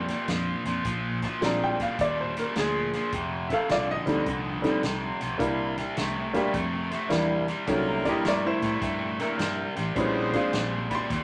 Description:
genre	electric blues shuffle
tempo	105 BPM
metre	4/4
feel	swing 66% on 8ths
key	unclear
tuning	A4 = 440 Hz
part	cranked stack guitar	riff	0.0-11.2 s	F2 to A3	-32 LUFS	equal	overdrive
part	vintage muted fingered electric bass	bass	0.0-11.2 s	F1 to A2	-37 LUFS	equal	none
part	vintage drum kit	drums	0.1-11.2 s	hi-hat, kick drum, snare drum	-39 LUFS	equal	none
part	bright upright piano	accompaniment	1.2-11.2 s	F3 to C6	-30 LUFS	equal	none
part	dark horn section	stabs	7.7-10.7 s	Bb3 to C5	-34 LUFS	equal	none
room	moderate large studio reverb, RT60 0.9 s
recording	none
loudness	-27 LUFS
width	mono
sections	0.0-11.2 A section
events	none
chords	0.0 Bb9; 3.1 F9; 5.4 C9; 10.0 Bb9

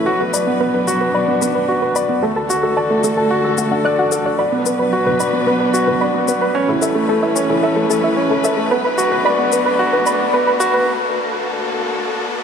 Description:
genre	piano and strings electronica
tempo	111 BPM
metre	4/4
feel	straight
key	B minor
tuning	A4 = 440 Hz
part	dark chamber string section	sustained chords	0.0-12.4 s	D2 to B4	-23 LUFS	left 3 dB	low-pass filter
part	dark concert grand piano	riff	0.0-10.9 s	A3 to D5	-16 LUFS	equal	digital delay
part	riser	sound effects	1.5-12.4 s	none	-29 LUFS	right 1 dB	none
part	soft round pluck	arpeggios	0.2-10.8 s	A4 to F#6	-22 LUFS	right 1 dB	chorus, digital delay
part	electronic shaker and toms	drums	0.3-10.8 s	none	-27 LUFS	left 5 dB	overdrive
room	wet huge ambient reverb, RT60 4.3 s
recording	high-pass filter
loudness	-14 LUFS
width	side -7 dB against mid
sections	0.0-12.4 A section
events	build-up 0.0-12.4; riser 1.5-12.4; break 10.9-12.4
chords	0.1 Bm; 2.2 D; 4.4 Bm; 6.6 Aadd9; 8.7 Bm; 10.9 D

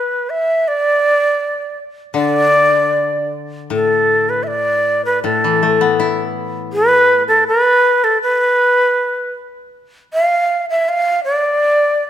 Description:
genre	japanese traditional, Japanese chamber music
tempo	80 BPM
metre	2/4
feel	rubato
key	D kumoi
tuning	A4 = 440 Hz
part	breathy bright shakuhachi	melody	0.0-12.1 s	A4 to F5	-13 LUFS	right 1 dB	none
part	koto	accompaniment	2.1-7.5 s	A2 to E4	-20 LUFS	left 7 dB	none
room	light reverb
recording	none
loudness	-12 LUFS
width	side -10 dB against mid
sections	0.0-3.7 A section; 3.7-12.1 B section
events	none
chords	none

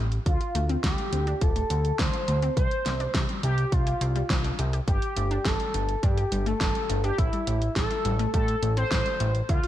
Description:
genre	synthwave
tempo	104 BPM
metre	4/4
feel	straight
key	A minor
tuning	A4 = 440 Hz
part	analog pluck	arpeggios	0.0-9.7 s	G3 to C5	-36 LUFS	left 4 dB	chorus, digital delay
part	fat analog bass	bass	0.0-9.6 s	D1 to A2	-27 LUFS	equal	sidechain pumping
part	pop drum kit	drums	0.1-9.7 s	hi-hat, snare drum	-31 LUFS	equal	gated reverb
part	expressive synth lead	melody	0.3-9.7 s	E4 to C5	-29 LUFS	equal	analog chorus, digital delay
part	electronic kick drum	drums	0.3-9.6 s	none	-27 LUFS	equal	none
room	light reverb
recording	none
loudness	-23 LUFS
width	side -12 dB against mid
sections	0.0-9.7 A section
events	none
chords	0.3 Dm7; 2.6 Csus2; 4.9 Gsus2; 7.2 Am7

